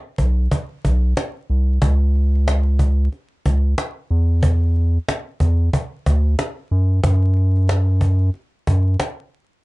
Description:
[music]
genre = hip hop, boom-bap hip-hop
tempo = 92 BPM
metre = 4/4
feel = swing 62% on 16ths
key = unclear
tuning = A4 = 444 Hz
[part]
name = round analog bass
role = bass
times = 0.2-9.0 s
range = B1 to F#2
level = -15 LUFS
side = equal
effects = none
[part]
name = cajon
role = drums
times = 0.2-9.2 s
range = none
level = -21 LUFS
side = equal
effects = none
[sound]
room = little or no reverb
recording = vinyl crackle, nothing above 10.6 kHz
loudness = -16 LUFS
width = side -22 dB against mid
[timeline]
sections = 0.0-9.6 A section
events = none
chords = none

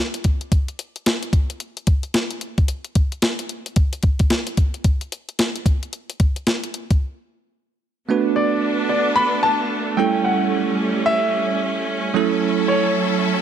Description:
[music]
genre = R&B, new jack swing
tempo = 111 BPM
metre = 4/4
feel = swing 61% on 16ths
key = B minor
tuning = A4 = 440 Hz
[part]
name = crisp 8-bit digital drum machine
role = drums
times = 0.1-7.0 s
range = hi-hat, kick drum, snare drum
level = -18 LUFS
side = equal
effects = overdrive
[part]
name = bell-like tine electric piano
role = accompaniment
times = 8.1-13.4 s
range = F#3 to B4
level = -21 LUFS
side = right 9 dB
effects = auto-pan
[part]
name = bright studio string section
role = sustained chords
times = 8.1-13.4 s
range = F#3 to A4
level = -23 LUFS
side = left 1 dB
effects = none
[part]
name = warm grand piano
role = melody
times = 8.4-13.4 s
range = C#5 to B5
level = -21 LUFS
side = left 2 dB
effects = ping-pong delay
[sound]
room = light reverb, small room ambience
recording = none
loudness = -18 LUFS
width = side -10 dB against mid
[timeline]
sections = 0.0-8.1 A section; 8.1-13.4 B section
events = break 7.0-8.1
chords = 0.0 N.C.; 8.1 Bm7; 10.0 A7; 12.1 F#m7

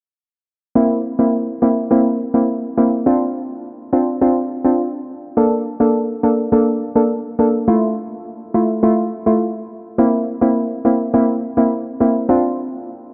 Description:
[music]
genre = dancehall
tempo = 104 BPM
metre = 4/4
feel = straight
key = unclear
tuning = A4 = 441 Hz
[part]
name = hollow square pluck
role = accompaniment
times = 0.8-13.1 s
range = A3 to A4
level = -18 LUFS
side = equal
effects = chorus
[sound]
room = moderate plate reverb, RT60 3.7 s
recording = dark, warm production, low-pass filter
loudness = -17 LUFS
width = mono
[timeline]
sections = 0.8-13.1 A section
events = none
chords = 0.8 C7; 3.1 Dm7; 5.4 Bbmaj7; 7.7 Fmaj7; 10.0 C7; 12.3 Dm7

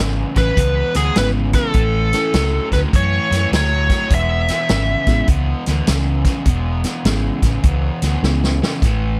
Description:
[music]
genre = electric blues shuffle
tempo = 102 BPM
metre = 4/4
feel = swing 64% on 8ths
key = E mixolydian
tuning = A4 = 440 Hz
[part]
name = raw garage guitar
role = riff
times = 0.0-9.2 s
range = E2 to F#3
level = -26 LUFS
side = equal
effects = overdrive
[part]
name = vintage muted fingered electric bass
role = bass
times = 0.0-9.2 s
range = E1 to F#2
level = -21 LUFS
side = equal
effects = none
[part]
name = biting lead guitar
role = melody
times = 0.4-5.3 s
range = G#4 to E5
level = -22 LUFS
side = equal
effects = overdrive
[part]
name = vintage drum kit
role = drums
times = 0.4-9.0 s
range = hi-hat, kick drum, snare drum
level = -21 LUFS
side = equal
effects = none
[part]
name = reed electric piano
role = accompaniment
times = 1.2-8.6 s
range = G#3 to A4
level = -27 LUFS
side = equal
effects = none
[sound]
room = small room ambience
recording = none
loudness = -17 LUFS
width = mono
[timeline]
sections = 0.0-9.2 A section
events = drum fill 8.2-8.8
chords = 0.0 E; 1.8 A; 4.1 E

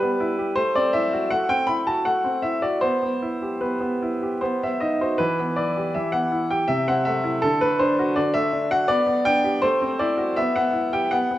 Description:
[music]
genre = classical-period piano sonatina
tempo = 76-83 BPM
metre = 3/4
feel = rubato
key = E minor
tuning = A4 = 442 Hz
[part]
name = clear baby grand piano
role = solo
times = 0.0-11.4 s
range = C3 to B5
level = -20 LUFS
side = equal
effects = none
[sound]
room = wet recital hall reverb, RT60 1.7 s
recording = none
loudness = -20 LUFS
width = side -14 dB against mid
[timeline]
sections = 0.0-11.4 A section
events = none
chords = 0.0 Em/G; 0.6 F#m7b5/A; 2.8 Em/B; 4.4 B; 5.2 Em; 6.7 Am/C; 7.4 D; 8.9 G/B; 9.6 F#m7b5/A; 10.4 Em/B

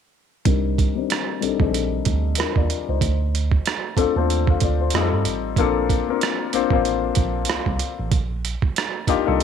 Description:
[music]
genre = R&B, neo-soul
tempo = 94 BPM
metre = 4/4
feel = swing 58% on 16ths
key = C dorian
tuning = A4 = 443 Hz
[part]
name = clear grand piano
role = accompaniment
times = 0.5-9.4 s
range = G3 to F5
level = -22 LUFS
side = left 11 dB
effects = low-pass filter
[part]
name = mellow tine electric piano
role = bass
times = 0.5-9.4 s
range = A1 to G2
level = -24 LUFS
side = right 2 dB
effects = medium stereo tremolo
[part]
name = boom bap sampler-style drum kit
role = drums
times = 0.5-9.4 s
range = hi-hat, kick drum, rim click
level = -22 LUFS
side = right 5 dB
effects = none
[sound]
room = light reverb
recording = 1960s-style stereo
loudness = -19 LUFS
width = side -8 dB against mid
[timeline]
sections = 0.5-9.4 A section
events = filter sweep on grand piano 0.5-9.4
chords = 0.5 Cm9; 3.0 Dm7; 4.9 F9; 5.6 Bbmaj9; 8.1 Ebmaj9/Bb

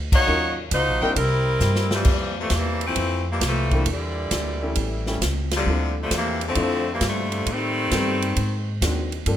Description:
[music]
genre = jazz, big band swing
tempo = 134 BPM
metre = 4/4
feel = swing 68% on 8ths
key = F major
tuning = A4 = 438 Hz
[part]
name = upright bass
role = bass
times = 0.0-9.4 s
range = Gb1 to A2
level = -25 LUFS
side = equal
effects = none
[part]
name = bright saxophone section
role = melody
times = 0.1-8.8 s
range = Bb2 to Db5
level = -24 LUFS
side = left 1 dB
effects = plate reverb
[part]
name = swinging big-band drum kit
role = drums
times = 0.1-9.4 s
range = crash cymbal, hi-hat, kick drum, ride cymbal, snare drum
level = -26 LUFS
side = equal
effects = none
[part]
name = clear upright piano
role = accompaniment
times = 0.3-9.4 s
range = Eb3 to A4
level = -29 LUFS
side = left 1 dB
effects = plate reverb
[part]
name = warm trumpet section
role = stabs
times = 1.0-1.1 s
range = Bb4 to G5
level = -27 LUFS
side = equal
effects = none
[sound]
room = moderate studio reverb, RT60 0.6 s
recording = rough home demo mix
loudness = -20 LUFS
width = side -11 dB against mid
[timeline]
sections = 0.0-2.1 A section; 2.1-9.4 B section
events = band accent 0.0, 5.4; drum fill 1.6-2.1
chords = 0.3 Ebm7; 1.2 C7; 2.1 Fmaj7; 3.9 Em7b5; 4.8 A7; 5.7 Dm7; 7.5 Am7b5; 8.4 Ab7#11

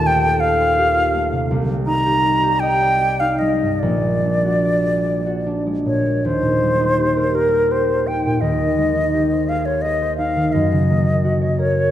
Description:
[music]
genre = classical, impressionist duo for flute and harp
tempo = 48-59 BPM (dotted quarters)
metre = 6/8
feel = rubato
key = unclear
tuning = A4 = 439 Hz
[part]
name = mellow silver concert flute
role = melody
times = 0.0-11.9 s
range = Bb4 to Bb5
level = -19 LUFS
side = equal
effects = none
[part]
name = concert harp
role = accompaniment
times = 0.0-11.9 s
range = Eb1 to F5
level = -18 LUFS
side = equal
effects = none
[sound]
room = wet concert hall reverb, RT60 1.9 s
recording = dark, warm production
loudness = -16 LUFS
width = side -11 dB against mid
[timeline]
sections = 0.0-6.2 A section; 6.2-11.9 B section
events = none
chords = 0.0 Fadd9/Eb; 1.5 Cmadd9; 3.8 Bbaug7; 6.2 Eb6; 8.4 Abmaj7/Eb; 10.5 Gb6

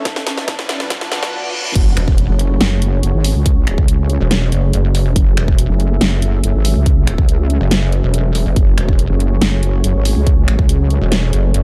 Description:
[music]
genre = heavy wobble dubstep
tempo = 141 BPM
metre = 4/4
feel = half-time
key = F# minor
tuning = A4 = 440 Hz
[part]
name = supersaw pad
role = sustained chords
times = 0.0-11.6 s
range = F#3 to E5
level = -28 LUFS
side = equal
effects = sidechain pumping, low-pass filter
[part]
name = riser, reverse cymbal and impact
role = sound effects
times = 0.1-3.5 s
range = none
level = -28 LUFS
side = equal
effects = none
[part]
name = granular cloud pad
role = texture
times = 0.0-1.3 s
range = A4 to A5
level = -32 LUFS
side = equal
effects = built-in reverb, sidechain pumping
[part]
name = dubstep drum kit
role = drums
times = 0.1-11.6 s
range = crash cymbal, finger snaps, hi-hat, snare drum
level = -22 LUFS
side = equal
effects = high-pass filter on hats, high-pass filter on snare, high-pass filter on cymbals, high-pass filter on room
[part]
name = electronic kick drum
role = drums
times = 0.1-10.7 s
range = none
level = -16 LUFS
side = equal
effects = none
[part]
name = wobble bass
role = bass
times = 1.8-11.0 s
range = F#1 to C#2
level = -17 LUFS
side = equal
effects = chorus, overdrive
[part]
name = pulsing pluck wobble bass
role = bass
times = 2.0-11.6 s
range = E1 to F#1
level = -17 LUFS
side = equal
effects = chorus, overdrive
[sound]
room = little or no reverb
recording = dark, warm production, high-pass filter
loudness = -15 LUFS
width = mono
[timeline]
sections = 0.0-1.8 A section; 1.8-11.6 B section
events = build-up 0.0-1.8; drum fill 0.0-1.3; riser 0.1-1.8; reverse cymbal 0.9-1.8; drop 1.8-11.6; impact 1.8-3.5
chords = 0.1 Bm; 1.8 F#madd9

